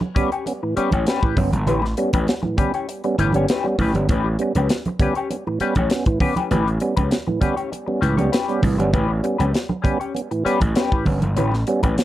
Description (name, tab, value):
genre	funk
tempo	99 BPM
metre	4/4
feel	straight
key	A mixolydian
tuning	A4 = 440 Hz
part	semi-hollow electric guitar	accompaniment	0.0-12.0 s	C#4 to C#5	-25 LUFS	left 6 dB	wah, analog chorus, plate reverb
part	congas	percussion	0.0-12.0 s	none	-26 LUFS	right 3 dB	none
part	tonewheel organ	stabs	0.2-12.0 s	A2 to C#4	-23 LUFS	right 2 dB	overdrive, chorus vibrato, slow rotary speaker, analog delay
part	tight funk drum kit	drums	0.2-12.0 s	hi-hat, kick drum, snare drum	-22 LUFS	equal	none
part	gritty slap bass	bass	0.8-12.0 s	G1 to C#2	-21 LUFS	equal	overdrive
room	light reverb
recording	none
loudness	-18 LUFS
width	side -14 dB against mid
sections	0.0-12.0 A section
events	none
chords	0.0 A9